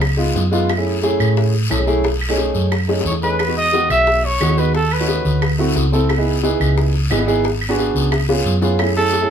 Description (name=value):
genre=Afro-Cuban jazz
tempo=178 BPM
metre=4/4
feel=straight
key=C# minor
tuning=A4 = 439 Hz
part: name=hollow-body short-scale fingered electric bass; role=bass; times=0.0-9.2 s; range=G#1 to A2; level=-18 LUFS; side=equal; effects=none
part: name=bongos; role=percussion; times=0.0-9.3 s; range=none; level=-26 LUFS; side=left 4 dB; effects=none
part: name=claves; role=percussion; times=0.0-9.0 s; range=none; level=-27 LUFS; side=right 4 dB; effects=none
part: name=guiro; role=percussion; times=0.0-9.3 s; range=none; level=-28 LUFS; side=left 4 dB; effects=none
part: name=warm grand piano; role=accompaniment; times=0.2-9.3 s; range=D#3 to A4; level=-20 LUFS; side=right 1 dB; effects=none
part: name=warm trumpet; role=melody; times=3.1-5.6, 9.0-9.3 s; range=A4 to E5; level=-18 LUFS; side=right 1 dB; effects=none
room=wet small room ambience, RT60 0.5 s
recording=band playing live in one room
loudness=-15 LUFS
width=side -8 dB against mid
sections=0.0-8.8 A section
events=drum fill 2.9-3.4, 8.3-8.8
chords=0.0 C#7; 0.7 F#m9; 2.0 B13; 3.4 Emaj7; 4.7 D#m7b5; 5.4 D9; 6.1 C#m9; 7.4 G#m7b5; 8.1 C#7; 8.8 F#m9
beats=0.02 0.36 | 0.69 1.03 1.37 1.71 | 2.04 2.38 2.72 3.06 | 3.40 3.73 4.07 4.41 | 4.75 5.08 5.42 5.76 | 6.10 6.43 6.77 7.11 | 7.45 7.78 8.12 8.46 | 8.79 9.13